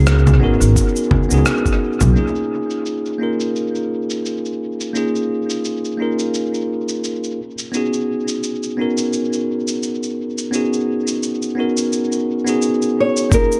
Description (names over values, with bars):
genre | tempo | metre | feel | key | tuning
sunset chillout | 86 BPM | 4/4 | swing 57% on 16ths | unclear | A4 = 438 Hz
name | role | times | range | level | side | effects
nylon-string guitar | melody | 0.0-0.7, 13.0-13.6 s | Ab4 to Db5 | -23 LUFS | equal | tape echo
bell-like tine electric piano | accompaniment | 0.0-13.6 s | Bb3 to Bb4 | -21 LUFS | equal | tape echo
upright bass | bass | 0.0-2.1 s | Ab1 to Db2 | -16 LUFS | equal | none
electronic rim click, cabasa and congas | drums | 0.1-13.6 s | none | -26 LUFS | equal | low-pass filter on perc, low-pass filter on snare, low-pass filter on room, dub echo
electronic kick drum | drums | 0.8-1.8, 13.3-13.5 s | none | -20 LUFS | equal | none
room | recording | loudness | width
moderate spring reverb, RT60 2.5 s | echo-heavy mix | -19 LUFS | mono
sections
0.0-2.2 A section; 2.2-13.3 B section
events
none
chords
0.0 Db9sus4; 2.2 Eb9sus4; 7.4 Db9sus4